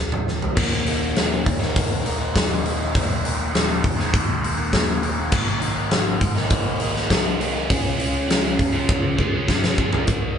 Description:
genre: quiet-loud alternative rock.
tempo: 101 BPM.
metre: 4/4.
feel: straight.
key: unclear.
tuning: A4 = 440 Hz.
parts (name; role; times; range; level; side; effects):
picked electric bass; bass; 0.0-10.3 s; Eb1 to Db2; -29 LUFS; equal; none.
huge arena drum kit; drums; 0.1-10.2 s; crash cymbal, hi-hat, kick drum, snare drum, toms; -21 LUFS; equal; none.
crunchy overdriven guitar; riff; 0.6-10.4 s; Eb2 to Ab4; -23 LUFS; equal; phaser.
room: moderate large studio reverb, RT60 1.4 s.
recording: band playing live in one room, nothing above 10.4 kHz.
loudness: -19 LUFS.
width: side -8 dB against mid.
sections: 0.6-10.1 A section.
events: drum fill 0.3, 8.9-10.1.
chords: 0.0 N.C.; 0.6 Ebsus4; 5.3 Abadd9; 7.7 Db.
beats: | 0.56 1.16 1.75 2.35 | 2.94 3.53 4.13 4.72 | 5.32 5.91 6.50 7.10 | 7.69 8.29 8.88 9.48 | 10.07.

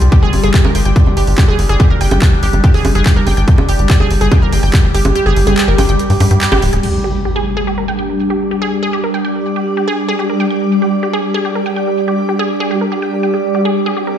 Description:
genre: psychedelic trance.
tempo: 143 BPM.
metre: 4/4.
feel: straight.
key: unclear.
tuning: A4 = 440 Hz.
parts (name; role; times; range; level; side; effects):
overtone-sweeping drone; sustained chords; 0.0-14.2 s; G3 to G4; -20 LUFS; equal; chorus, built-in reverb, phaser, sidechain pumping.
tight sequencer bass; bass; 0.0-6.8 s; D1 to G2; -13 LUFS; equal; tube saturation.
techno drum kit; drums; 0.0-6.9 s; bongos, crash cymbal, handclaps, hi-hat; -20 LUFS; right 2 dB; overdrive.
granular cloud pad; texture; 0.0-14.2 s; G3 to D6; -19 LUFS; equal; built-in reverb, sidechain pumping.
wide unison pluck; riff; 0.1-14.2 s; G4 to G5; -20 LUFS; right 1 dB; auto-pan, sidechain pumping, digital delay.
electronic kick drum; drums; 0.1-4.8 s; none; -11 LUFS; equal; overdrive.
impact; sound effects; 6.8-8.5 s; none; -22 LUFS; equal; none.
room: light reverb, digital ambience.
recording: played on a big sound system in a bare room, large studio reverb.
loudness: -11 LUFS.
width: side -9 dB against mid.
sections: 0.0-6.8 A section; 6.8-14.2 B section.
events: kick drops out 5.2-6.8; band accent 6.4; impact 6.8-8.5.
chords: 0.0 G5.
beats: | 0.12 0.54 0.96 1.38 | 1.80 2.22 2.64 3.06 | 3.48 3.90 4.32 4.74 | 5.16 5.58 5.99 6.41 | 6.83 7.25 7.67 8.09 | 8.51 8.93 9.35 9.77 | 10.19 10.61 11.03 11.45 | 11.87 12.29 12.71 13.13 | 13.55 13.97.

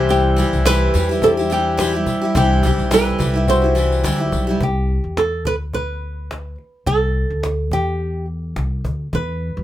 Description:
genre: acoustic pop.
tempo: 106 BPM.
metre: 4/4.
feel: swing 55% on 16ths.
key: unclear.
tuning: A4 = 439 Hz.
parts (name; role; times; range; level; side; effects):
felt-muted upright piano; accompaniment; 0.0-4.6 s; C4 to G4; -25 LUFS; left 6 dB; none.
picked steel-string acoustic guitar; accompaniment; 0.0-4.6 s; C3 to G4; -21 LUFS; right 1 dB; none.
hand-pumped harmonium; sustained chords; 0.0-4.6 s; G3 to E5; -28 LUFS; left 1 dB; none.
upright bass; bass; 0.0-9.6 s; B1 to F#2; -20 LUFS; equal; none.
flamenco guitar; melody; 0.1-9.6 s; G4 to C5; -20 LUFS; right 2 dB; none.
cajon; drums; 0.1-9.5 s; none; -26 LUFS; left 1 dB; none.
tambourine; percussion; 0.1-4.5 s; none; -33 LUFS; left 7 dB; none.
room: light reverb.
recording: band playing live in one room.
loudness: -16 LUFS.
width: side -13 dB against mid.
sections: 0.0-4.6 A section; 4.6-9.6 B section.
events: none.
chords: 0.0 C; 9.1 E5.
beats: | 0.09 0.66 1.22 1.78 | 2.35 2.91 3.48 4.04 | 4.61 5.17 5.74 6.30 | 6.87 7.43 8.00 8.57 | 9.13.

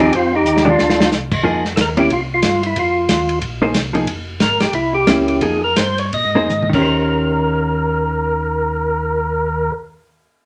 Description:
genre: soul jazz organ trio.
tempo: 154-183 BPM.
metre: 4/4.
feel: swing 61% on 8ths.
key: Eb mixolydian.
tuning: A4 = 441 Hz.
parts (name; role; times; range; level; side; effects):
percussive tonewheel organ; melody; 0.0-9.7 s; C4 to Eb5; -19 LUFS; equal; slow rotary speaker.
hollow-body jazz guitar; accompaniment; 0.0-9.8 s; Eb3 to C5; -21 LUFS; equal; none.
mellow tonewheel organ; bass; 0.0-9.7 s; F1 to Bb2; -27 LUFS; equal; slow rotary speaker.
warm soul drum kit; drums; 0.0-6.8 s; crash cymbal, hi-hat, kick drum, ride cymbal, snare drum, toms; -23 LUFS; equal; none.
room: wet club reverb, RT60 0.6 s.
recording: none.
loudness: -17 LUFS.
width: mono.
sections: 0.0-1.4 A section; 1.4-6.9 B section; 6.9-10.0 C section.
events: drum fill 0.5-1.1, 6.5-6.9; slowing down 4.1-6.9.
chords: 0.1 Fm7; 0.8 Csus24; 1.4 Fm7; 2.1 C5; 2.8 Ebsus2; 3.4 Bb9sus4; 4.1 Fm; 4.7 C7b9; 5.4 Fm11; 6.1 Bb9sus4; 6.7 Eb6.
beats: | 0.12 0.45 0.78 1.11 | 1.44 1.77 2.10 2.43 | 2.75 3.08 3.41 3.74 | 4.07 4.40 4.73 5.07 | 5.42 5.77 6.13 6.50 | 6.88 7.27 7.65 8.04 | 8.43 8.82 9.21 9.60.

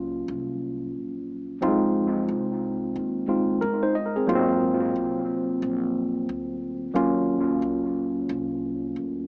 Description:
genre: hip hop, jazz-hop.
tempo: 90 BPM.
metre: 4/4.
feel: swing 64% on 16ths.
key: Eb dorian.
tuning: A4 = 440 Hz.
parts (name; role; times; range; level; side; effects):
tine electric piano; accompaniment; 0.0-9.3 s; Gb3 to Eb5; -23 LUFS; equal; medium stereo tremolo, analog delay.
upright bass; bass; 0.0-9.3 s; G1 to F2; -36 LUFS; equal; none.
room: moderate echo chamber reverb, RT60 1.8 s, studio ambience.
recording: echo-heavy mix, small speaker sound.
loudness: -23 LUFS.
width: side -30 dB against mid.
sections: 0.0-9.3 A section.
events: none.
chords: 0.0 Ebm9 (rootless); 1.6 Fm7; 4.3 Ab13; 7.0 Ebm9.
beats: 0.29 0.95 | 1.62 2.29 2.95 3.62 | 4.29 4.95 5.62 6.29 | 6.95 7.62 8.29 8.95.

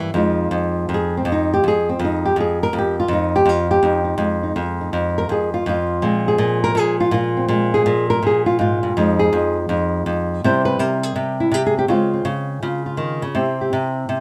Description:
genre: solo jazz.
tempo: 164 BPM.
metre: 4/4.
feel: swing 64% on 8ths.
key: F minor.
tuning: A4 = 442 Hz.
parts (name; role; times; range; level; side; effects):
flamenco guitar; solo; 0.0-14.2 s; F2 to C5; -19 LUFS; equal; none.
room: little or no reverb.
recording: close, detailed microphones.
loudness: -19 LUFS.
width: mono.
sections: 0.2-14.2 A section.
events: nylon-string guitar solo 0.2-14.2.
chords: 0.2 Fm9; 6.0 Bbsus2; 9.0 Fm7; 10.4 C; 11.9 Dbmaj7; 13.3 C.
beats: | 0.16 0.53 0.89 1.26 | 1.63 1.99 2.36 2.73 | 3.09 3.46 3.83 4.19 | 4.56 4.92 5.29 5.66 | 6.02 6.39 6.76 7.12 | 7.49 7.86 8.22 8.59 | 8.95 9.32 9.69 10.05 | 10.42 10.78 11.15 11.52 | 11.88 12.25 12.62 12.98 | 13.35 13.71 14.08.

